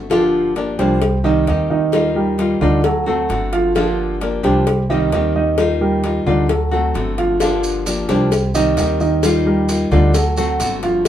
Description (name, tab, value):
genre	latin, Cuban son and guajira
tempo	132 BPM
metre	4/4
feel	straight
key	G minor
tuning	A4 = 440 Hz
part	nylon-string guitar	accompaniment	0.0-11.1 s	D3 to G4	-21 LUFS	left 4 dB	none
part	upright bass	bass	0.0-11.1 s	G1 to Eb2	-22 LUFS	equal	none
part	dark concert grand piano	arpeggios	0.1-11.1 s	D3 to F5	-17 LUFS	right 2 dB	none
part	cowbell	percussion	0.1-11.1 s	none	-23 LUFS	left 5 dB	none
part	maracas	percussion	7.4-11.1 s	none	-29 LUFS	right 3 dB	none
room	moderate studio reverb, RT60 0.5 s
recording	band playing live in one room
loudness	-14 LUFS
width	side -11 dB against mid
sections	0.1-11.1 A section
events	none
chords	0.1 Gm7; 1.0 Cm; 1.9 Ebadd9; 2.8 D7; 3.8 Gm7; 4.7 Cm; 5.6 Ebadd9; 6.5 D7; 7.4 Gm7; 8.3 Cm; 9.2 Ebadd9; 10.1 D7